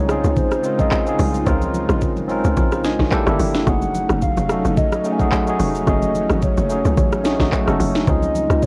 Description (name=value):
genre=amapiano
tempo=109 BPM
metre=4/4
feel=swing 55% on 16ths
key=unclear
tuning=A4 = 440 Hz
part: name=hollow clarinet-like synth lead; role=melody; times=0.0-8.7 s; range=C5 to Ab5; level=-27 LUFS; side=equal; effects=chorus, tape echo
part: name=tine electric piano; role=accompaniment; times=0.0-8.7 s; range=A3 to Ab5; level=-25 LUFS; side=equal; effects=none
part: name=airy breathy pad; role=sustained chords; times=0.0-8.7 s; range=Db3 to F4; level=-28 LUFS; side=equal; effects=chorus, sidechain pumping
part: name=tight log drum bass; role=bass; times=0.0-8.7 s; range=F1 to Db2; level=-24 LUFS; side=equal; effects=none
part: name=afro-pop drum kit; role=drums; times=0.1-8.7 s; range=handclaps, hi-hat, kick drum, rim click, shaker, snare drum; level=-23 LUFS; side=equal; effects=overdrive, cassette tape
part: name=congas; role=percussion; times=0.4-8.7 s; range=none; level=-32 LUFS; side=equal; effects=none
room=light reverb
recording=home recording on cassette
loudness=-18 LUFS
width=mono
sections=0.0-8.7 A section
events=tine electric piano fill 2.6-3.7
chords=0.0 Dbmaj9; 3.1 Gm6; 3.7 Gbm6; 8.1 Dbmaj9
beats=0.37 0.92 | 1.47 2.02 2.57 3.12 | 3.67 4.22 4.77 5.32 | 5.87 6.42 6.97 7.52 | 8.07 8.62